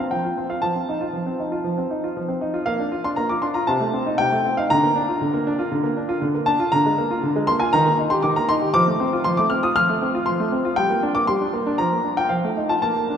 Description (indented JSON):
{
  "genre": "classical-period piano sonatina",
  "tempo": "118 BPM",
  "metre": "4/4",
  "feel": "straight",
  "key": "Bb major",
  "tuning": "A4 = 440 Hz",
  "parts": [
    { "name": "clear concert grand piano", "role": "solo", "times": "0.0-13.2 s", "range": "C3 to F6", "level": "-19 LUFS", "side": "equal", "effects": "none" }
  ],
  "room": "wet cathedral reverb, RT60 5.0 s",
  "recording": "in a vast, echoing space",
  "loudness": "-19 LUFS",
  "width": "side -8 dB against mid",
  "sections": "0.0-13.2 A section",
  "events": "none",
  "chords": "0.0 F5; 0.6 F7; 2.7 Bb; 3.7 Cm6; 4.7 Bb/D; 6.7 Bb7/D; 7.7 Eb; 8.8 F; 10.8 Gm; 11.8 Bb/F; 12.3 F7",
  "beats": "0.13 | 0.63 1.14 1.65 2.16 | 2.67 3.18 3.69 4.19 | 4.71 5.22 5.72 6.23 | 6.73 7.24 7.74 8.25 | 8.75 9.26 9.76 10.27 | 10.78 11.29 11.80 12.32 | 12.85"
}